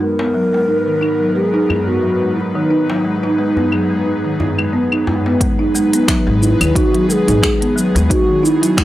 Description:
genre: organic downtempo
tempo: 89 BPM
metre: 4/4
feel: swing 56% on 16ths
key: G# minor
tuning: A4 = 440 Hz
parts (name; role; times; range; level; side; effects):
- mellow hollow bass bansuri; melody; 0.0-8.8 s; D#4 to A#4; -18 LUFS; equal; analog delay
- airy breathy pad; sustained chords; 0.0-8.8 s; G#2 to B4; -22 LUFS; left 1 dB; chorus, sidechain pumping
- folk marimba with soft mallets; arpeggios; 0.0-8.8 s; D#3 to D#4; -17 LUFS; right 1 dB; analog delay
- darbuka; percussion; 0.2-5.4 s; none; -24 LUFS; left 1 dB; none
- organic electronic drum kit; drums; 1.0-8.8 s; claves, finger snaps, hi-hat, shaker; -19 LUFS; left 1 dB; low-pass filter on perc, low-pass filter on hats, low-pass filter on snare
- electronic kick drum; drums; 5.4-8.8 s; none; -18 LUFS; equal; overdrive
- upright bass; bass; 6.3-8.1 s; G#1 to D#2; -16 LUFS; equal; sidechain pumping
room: studio reverb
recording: dry, gritty hardware recording, transformer saturation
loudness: -13 LUFS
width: side -14 dB against mid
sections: 0.0-5.4 A section; 5.4-8.8 B section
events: none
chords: 0.0 Bmaj7/G#; 5.4 G#m7

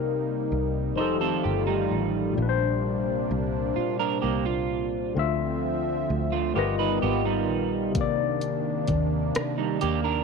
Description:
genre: slow six-eight R&B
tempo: 43 BPM (dotted quarters)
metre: 6/8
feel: straight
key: C minor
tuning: A4 = 439 Hz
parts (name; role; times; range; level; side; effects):
- barky tine electric piano; accompaniment; 0.0-10.2 s; Bb2 to E5; -28 LUFS; left 12 dB; overdrive, phaser
- warm analog pad; sustained chords; 0.0-10.2 s; C3 to E5; -31 LUFS; right 11 dB; chorus
- fingered electric bass; bass; 0.0-10.2 s; F1 to Eb2; -30 LUFS; equal; none
- electric guitar at the edge of break-up; second line; 1.0-10.2 s; G3 to C5; -28 LUFS; right 12 dB; analog chorus
- smooth R&B drum kit; drums; 8.0-10.0 s; hi-hat, kick drum, rim click; -29 LUFS; equal; none
room: light reverb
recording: 1960s-style stereo with parts hard left and right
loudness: -24 LUFS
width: side -4 dB against mid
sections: 0.0-10.2 A section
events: none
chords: 0.0 Cm7; 1.0 F9; 2.4 Bb69; 5.2 Dm9; 6.6 G7alt; 8.0 Cm9

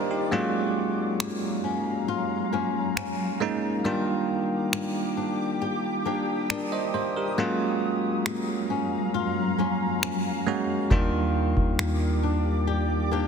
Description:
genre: contemporary R&B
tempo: 68 BPM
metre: 4/4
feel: straight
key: unclear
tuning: A4 = 444 Hz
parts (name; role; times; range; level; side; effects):
- bell-like tine electric piano; accompaniment; 0.0-13.3 s; G3 to F5; -27 LUFS; moving between equal and right 6 dB; auto-pan
- granular cloud pad; sustained chords; 0.0-13.3 s; Gb3 to Eb6; -32 LUFS; equal; built-in reverb, sidechain pumping
- flamenco guitar; arpeggios; 0.0-13.3 s; Eb3 to G4; -31 LUFS; left 8 dB; tape echo
- downlifter; sound effects; 0.0-3.8 s; none; -48 LUFS; equal; none
- booming analog drum machine; drums; 1.2-12.0 s; finger snaps, kick drum; -30 LUFS; equal; soft clipping on snare
- soft 808-style bass; bass; 10.9-13.3 s; Eb2; -26 LUFS; equal; none
room: light reverb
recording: dense, heavily limited modern master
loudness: -24 LUFS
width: side -6 dB against mid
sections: 0.0-13.3 A section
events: break 0.0-10.9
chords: 0.3 Gbmaj7; 3.8 Ebmaj7; 7.4 Gbmaj7; 10.9 Ebmaj7

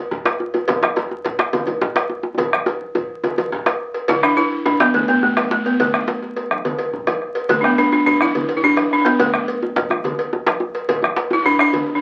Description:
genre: west african traditional, West African drum ensemble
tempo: 141 BPM (dotted quarters)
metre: 12/8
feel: straight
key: unclear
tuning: A4 = 440 Hz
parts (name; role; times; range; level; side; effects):
- bombo; percussion; 0.1-11.7 s; none; -25 LUFS; equal; none
- djembe; percussion; 0.1-12.0 s; none; -32 LUFS; equal; none
- congas; percussion; 0.3-11.9 s; none; -32 LUFS; equal; none
- cowbell; percussion; 0.3-11.9 s; none; -26 LUFS; equal; none
- djembe; percussion; 0.3-11.9 s; none; -25 LUFS; equal; none
- balafon; melody; 4.1-12.0 s; A3 to E4; -19 LUFS; equal; none
room: wet small room reverb, RT60 0.5 s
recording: very old 78 rpm record, vinyl crackle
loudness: -19 LUFS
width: mono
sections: 0.0-4.1 A section; 4.1-12.0 B section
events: drum fill 2.4-4.1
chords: none

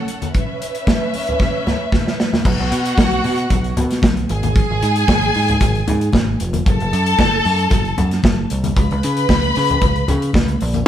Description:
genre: disco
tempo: 114 BPM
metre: 4/4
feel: straight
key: unclear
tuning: A4 = 442 Hz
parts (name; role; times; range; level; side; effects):
- warm studio string section; second line; 0.0-10.6 s; C#4 to B5; -21 LUFS; left 1 dB; none
- modern studio drum kit; drums; 0.1-10.9 s; crash cymbal, hi-hat, kick drum, snare drum; -18 LUFS; equal; none
- congas; percussion; 0.2-10.9 s; none; -24 LUFS; left 2 dB; none
- overdriven picked electric bass; bass; 2.5-10.8 s; F1 to C#3; -19 LUFS; equal; none
room: moderate stone room reverb, RT60 1.0 s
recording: band playing live in one room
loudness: -14 LUFS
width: side -10 dB against mid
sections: 0.0-2.5 A section; 2.5-10.9 B section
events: drum fill 1.4-2.5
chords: 0.3 C#m7; 2.5 B5; 4.3 N.C.; 6.7 F#m; 8.8 Bsus2

